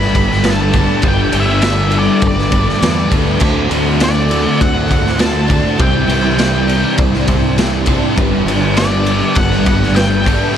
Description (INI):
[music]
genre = rock, shoegaze and dream pop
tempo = 101 BPM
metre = 4/4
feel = straight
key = G major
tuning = A4 = 440 Hz
[part]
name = octave-fuzz lead guitar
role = melody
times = 0.0-10.6 s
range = D5 to B5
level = -20 LUFS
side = left 1 dB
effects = distortion, analog delay
[part]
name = string machine, cellos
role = sustained chords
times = 0.0-10.6 s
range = G4 to D6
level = -27 LUFS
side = equal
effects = none
[part]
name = picked twelve-string acoustic guitar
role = arpeggios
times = 0.0-10.6 s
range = E3 to A4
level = -26 LUFS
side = left 5 dB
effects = ensemble chorus, analog delay
[part]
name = biting overdriven guitar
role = riff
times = 0.0-10.6 s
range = G2 to D4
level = -21 LUFS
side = equal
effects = none
[part]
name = overdriven semi-hollow guitar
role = riff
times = 0.0-10.6 s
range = C3 to C5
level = -22 LUFS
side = left 9 dB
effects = wide subtle chorus
[part]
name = overdriven semi-hollow guitar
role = riff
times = 0.0-10.6 s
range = G2 to G4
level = -20 LUFS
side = right 11 dB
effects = reverse reverb
[part]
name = growling fingered electric bass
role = bass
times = 0.0-10.4 s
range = G1 to E2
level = -18 LUFS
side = equal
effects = overdrive
[part]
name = raw garage drum kit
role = drums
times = 0.0-10.4 s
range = crash cymbal, kick drum, ride cymbal, snare drum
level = -16 LUFS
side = equal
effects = none
[sound]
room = studio reverb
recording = none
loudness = -11 LUFS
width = side -9 dB against mid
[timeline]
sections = 0.0-10.6 A section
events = none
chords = 0.0 Gadd9; 3.4 D7; 5.8 Cadd9; 8.2 Gadd9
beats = 0.44 | 1.03 1.63 2.22 2.81 | 3.41 4.00 4.60 5.19 | 5.79 6.38 6.98 7.57 | 8.17 8.77 9.36 9.96 | 10.55